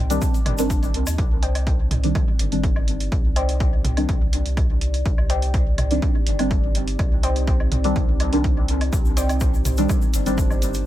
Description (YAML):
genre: dub techno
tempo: 124 BPM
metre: 4/4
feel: straight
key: C minor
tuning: A4 = 440 Hz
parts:
  - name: dark analog pad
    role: sustained chords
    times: 0.0-10.9 s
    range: C4 to Eb5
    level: -32 LUFS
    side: equal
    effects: chorus, phaser, sidechain pumping
  - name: warm sub bass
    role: bass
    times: 0.0-10.8 s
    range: G1 to Eb2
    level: -23 LUFS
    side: equal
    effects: sidechain pumping
  - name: deep mellow chord stab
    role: stabs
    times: 0.1-10.5 s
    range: Eb3 to D4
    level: -25 LUFS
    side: equal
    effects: chorus, phaser, sidechain pumping, dub echo
  - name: electronic hi-hat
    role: drums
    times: 0.1-10.8 s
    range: none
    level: -33 LUFS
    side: right 2 dB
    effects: none
  - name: egg shaker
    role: percussion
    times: 0.1-1.2, 8.9-10.8 s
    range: none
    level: -34 LUFS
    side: left 4 dB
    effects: none
  - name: electronic kick drum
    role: drums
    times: 0.2-10.5 s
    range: none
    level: -21 LUFS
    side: equal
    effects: none
  - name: electronic toms and woodblock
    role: percussion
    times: 0.5-10.6 s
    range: none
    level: -33 LUFS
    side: right 1 dB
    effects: sidechain pumping on perc, sidechain pumping on toms, dub echo
  - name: warbly dusty pluck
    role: riff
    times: 1.4-9.4 s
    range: C5 to G5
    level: -31 LUFS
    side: left 2 dB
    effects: chorus, sidechain pumping, dub echo
room: little or no reverb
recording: none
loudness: -18 LUFS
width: side -14 dB against mid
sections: 0.0-1.2 A section; 1.2-10.9 A section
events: none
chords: 0.0 Cmadd9